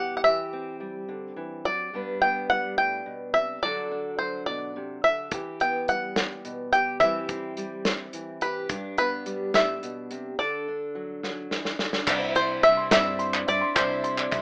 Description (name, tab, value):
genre	indie folk with a building arrangement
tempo	71 BPM (dotted quarters)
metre	6/8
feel	straight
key	unclear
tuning	A4 = 439 Hz
part	bluegrass banjo	melody	0.0-14.4 s	B4 to G5	-26 LUFS	equal	none
part	fingerpicked steel-string acoustic guitar	accompaniment	0.0-12.1 s	G2 to B4	-35 LUFS	equal	none
part	natural country drum kit	drums	5.3-14.4 s	crash cymbal, hi-hat, kick drum, snare drum	-30 LUFS	equal	none
part	picked twelve-string acoustic guitar	accompaniment	12.1-14.4 s	C3 to E4	-34 LUFS	equal	none
part	clear upright piano	arpeggios	12.1-14.4 s	D5 to C6	-32 LUFS	equal	none
part	hollow-body short-scale fingered electric bass	bass	12.1-14.4 s	C2 to G2	-42 LUFS	equal	none
part	group handclap	percussion	12.1-14.4 s	none	-29 LUFS	equal	none
room	light reverb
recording	rough home demo mix, AM radio sound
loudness	-26 LUFS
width	mono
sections	0.0-12.1 A section; 12.1-14.4 B section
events	break 10.4-12.1; drum fill 11.2-12.1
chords	0.2 C/E; 1.9 G; 3.6 D; 5.3 Em; 7.0 C/E; 8.7 G; 10.4 D; 12.1 Cadd9